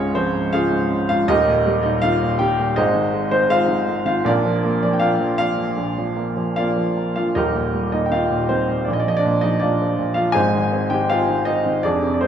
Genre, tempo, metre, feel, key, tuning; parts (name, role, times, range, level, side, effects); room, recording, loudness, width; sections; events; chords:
classical, lyrical solo piano; 80 BPM; 4/4; rubato; Eb major; A4 = 437 Hz
clear upright piano; solo; 0.0-12.3 s; Eb1 to Ab5; -17 LUFS; equal
wet recital hall reverb, RT60 1.6 s; recorded in a church or concert hall; -17 LUFS; side -8 dB against mid
0.0-12.3 A section
0.0 Db; 1.3 Eb; 2.8 Ab; 4.3 Bb; 7.4 Eb; 8.9 Bb; 10.4 Ab